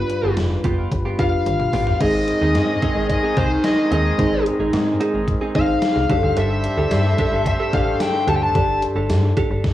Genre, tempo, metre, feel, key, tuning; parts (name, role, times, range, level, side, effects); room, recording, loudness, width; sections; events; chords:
1980s-style pop; 110 BPM; 4/4; straight; A4 = 439 Hz
bluesy overdriven lead guitar; melody; 0.0-8.8 s; B4 to A5; -23 LUFS; left 3 dB; distortion, cassette tape, tape echo
mellow FM electric piano; accompaniment; 0.0-9.7 s; G2 to D5; -23 LUFS; left 1 dB; chorus, cassette tape
brassy analog pad; sustained chords; 0.0-9.6 s; G3 to B4; -28 LUFS; equal; chorus, cassette tape
slap-like FM bass; bass; 0.0-9.6 s; F1 to Ab2; -22 LUFS; equal
direct-recorded clean electric guitar; riff; 0.1-9.7 s; B3 to A4; -26 LUFS; right 5 dB; lush chorus, cassette tape
gated 80s digital drum machine; drums; 0.1-9.7 s; crash cymbal, hi-hat, kick drum, snare drum, tambourine, toms; -24 LUFS; equal; gated reverb, gated reverb snare, overdrive, cassette tape
clear horn section; stabs; 2.0-9.3 s; Eb3 to C5; -29 LUFS; left 2 dB; cassette tape, tape echo
moderate spring reverb, RT60 2.7 s; home recording on cassette, studio ambience; -16 LUFS; side -13 dB against mid
0.0-2.0 A section; 2.0-9.7 B section
drum fill 1.5-2.0
0.0 G7; 2.0 Ab; 6.1 Gsus2